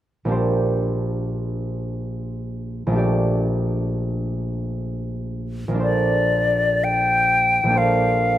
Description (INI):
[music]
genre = classical, impressionist duo for flute and harp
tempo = 57-70 BPM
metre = 3/4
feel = rubato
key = Bb major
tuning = A4 = 438 Hz
[part]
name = concert harp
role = accompaniment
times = 0.2-8.4 s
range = Bb1 to D5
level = -21 LUFS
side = right 1 dB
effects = none
[part]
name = bright concert flute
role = melody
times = 5.8-8.4 s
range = D5 to G5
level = -18 LUFS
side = left 2 dB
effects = none
[sound]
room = moderate concert hall reverb, RT60 2.0 s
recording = close, detailed microphones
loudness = -19 LUFS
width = side -13 dB against mid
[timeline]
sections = 0.4-5.8 A section; 5.8-8.4 B section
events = none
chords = 0.4 Bb69; 3.0 Gmadd9/Bb; 5.8 Bbmaj9